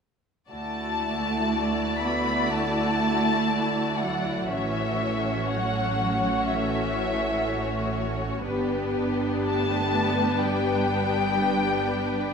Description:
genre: cinematic.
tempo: 61 BPM.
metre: 4/4.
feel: rubato.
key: unclear.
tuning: A4 = 440 Hz.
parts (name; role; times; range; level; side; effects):
clear symphonic violin section; melody; 0.5-12.3 s; E5 to B5; -28 LUFS; left 3 dB; none.
warm symphonic violin section; second line; 0.5-12.3 s; F#4 to D5; -29 LUFS; left 4 dB; none.
rich symphonic viola section; accompaniment; 0.5-12.3 s; A3 to E4; -29 LUFS; right 1 dB; none.
dark studio cello section; bass; 0.5-12.3 s; E3 to B3; -30 LUFS; right 4 dB; none.
rich symphonic double bass section; bass; 0.5-12.3 s; G1 to D2; -33 LUFS; right 3 dB; none.
room: moderate concert hall reverb, RT60 2.4 s.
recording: minimal, uncompressed stereo recording.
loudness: -23 LUFS.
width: side -6 dB against mid.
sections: 0.5-12.3 A section.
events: none.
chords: 0.5 Dadd9; 4.5 A6; 8.5 G.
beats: | 0.51 1.53 2.52 3.51 | 4.52 5.51 6.50 7.48 | 8.48 9.46 10.44 11.40.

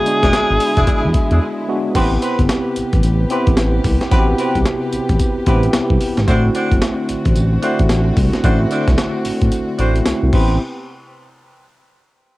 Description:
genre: R&B, new jack swing.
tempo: 111 BPM.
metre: 4/4.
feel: swing 62% on 16ths.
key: A dorian.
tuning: A4 = 440 Hz.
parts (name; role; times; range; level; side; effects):
bright alto saxophone; melody; 0.0-1.7 s; G#4; -18 LUFS; equal; cassette tape.
tine electric piano; accompaniment; 0.0-10.6 s; G#3 to G4; -20 LUFS; equal; medium stereo tremolo.
warm chamber string section; sustained chords; 0.0-10.6 s; C3 to B4; -26 LUFS; equal; none.
breakbeat sampler-style drum kit; drums; 0.1-10.5 s; crash cymbal, hi-hat, kick drum, snare drum, tambourine; -18 LUFS; equal; cassette tape.
warm horn section; stabs; 0.2-10.5 s; C4 to C5; -24 LUFS; right 1 dB; tape echo.
smooth gliding synth bass; bass; 0.2-10.6 s; E1 to E2; -16 LUFS; equal; none.
room: little or no reverb.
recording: home recording on cassette.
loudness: -14 LUFS.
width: side -18 dB against mid.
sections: 0.0-2.0 A section; 2.0-10.6 B section; 10.6-12.4 C section.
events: break 1.4-2.0; kick muted 9.5-10.6.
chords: 0.0 E7; 2.0 Am9; 6.3 D7; 10.3 Am9; 10.6 N.C..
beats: 0.33 0.87 1.41 | 1.95 2.49 3.03 3.57 | 4.11 4.65 5.20 5.74 | 6.28 6.82 7.36 7.90 | 8.44 8.98 9.52 10.06 | 10.60.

